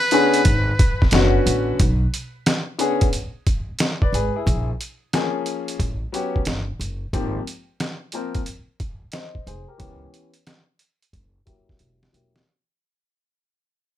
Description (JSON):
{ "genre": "hip hop, jazz-hop", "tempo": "90 BPM", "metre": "4/4", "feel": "swing 65% on 16ths", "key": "unclear", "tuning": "A4 = 440 Hz", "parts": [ { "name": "trumpet with metal mute", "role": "melody", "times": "0.0-1.1 s", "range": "B4", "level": "-23 LUFS", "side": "equal", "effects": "ping-pong delay" }, { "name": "mellow electric guitar", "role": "second line", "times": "0.0-1.1 s", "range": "G#4", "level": "-48 LUFS", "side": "right 6 dB", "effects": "none" }, { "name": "bright upright piano", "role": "accompaniment", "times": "0.1-12.4 s", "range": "D3 to D#5", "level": "-22 LUFS", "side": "left 3 dB", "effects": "low-pass filter" }, { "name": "trip hop sampler-style drum kit", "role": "drums", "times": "0.1-12.5 s", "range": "hi-hat, kick drum, snare drum", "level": "-21 LUFS", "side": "equal", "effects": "none" }, { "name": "upright bass", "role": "bass", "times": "0.5-12.4 s", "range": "E1 to C#2", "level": "-23 LUFS", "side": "equal", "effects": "none" } ], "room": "light reverb", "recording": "none", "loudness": "-19 LUFS", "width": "side -12 dB against mid", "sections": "0.0-1.8 A section; 1.8-12.5 B section", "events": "fade-out 1.8-12.5; filter sweep on upright piano 1.8-12.5; drum fill 11.8-12.5", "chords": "0.0 Bm69; 4.5 A#m7; 5.8 A13; 7.1 G#maj13; 9.8 C#m7b5; 11.1 F#7b9" }